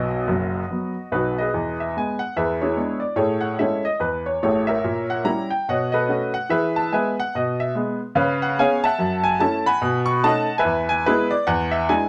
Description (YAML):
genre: jazz, stride piano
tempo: 145 BPM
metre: 4/4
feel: swing 61% on 8ths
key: E major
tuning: A4 = 440 Hz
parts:
  - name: clear upright piano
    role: solo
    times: 0.0-12.1 s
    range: F#1 to C#6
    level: -22 LUFS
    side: equal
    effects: none
room: moderate studio reverb, RT60 0.7 s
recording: none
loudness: -22 LUFS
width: mono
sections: 0.0-1.5 A section; 1.5-12.1 B section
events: none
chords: 0.0 B; 1.5 E; 2.3 E7; 3.2 Amaj7; 4.8 A#dim7; 5.7 B9; 6.5 E; 8.2 C#7; 9.0 F#m7; 9.8 B13; 10.6 E; 11.5 E7